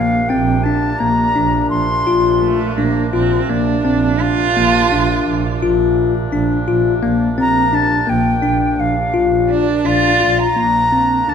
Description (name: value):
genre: contemporary instrumental, chamber music in an uneven meter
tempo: 169 BPM (eighths)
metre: 5/8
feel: straight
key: Bb major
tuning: A4 = 440 Hz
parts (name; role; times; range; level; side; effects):
- silver concert flute; melody; 0.0-2.7, 7.4-11.3 s; D5 to C6; -17 LUFS; left 2 dB; none
- clear woodwind section; sustained chords; 0.0-11.3 s; Bb2 to D4; -25 LUFS; equal; none
- bell-like tine electric piano; arpeggios; 0.0-11.3 s; Bb3 to F4; -17 LUFS; left 4 dB; none
- warm double bass; bass; 0.0-11.3 s; Bb1 to D2; -20 LUFS; right 5 dB; none
- rich cello; second line; 2.4-5.6, 9.5-10.6 s; A3 to F4; -18 LUFS; right 5 dB; none
room: moderate scoring stage reverb, RT60 1.5 s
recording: minimal, uncompressed stereo recording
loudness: -13 LUFS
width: side -7 dB against mid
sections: 0.0-10.6 A section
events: none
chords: 0.0 Bbadd9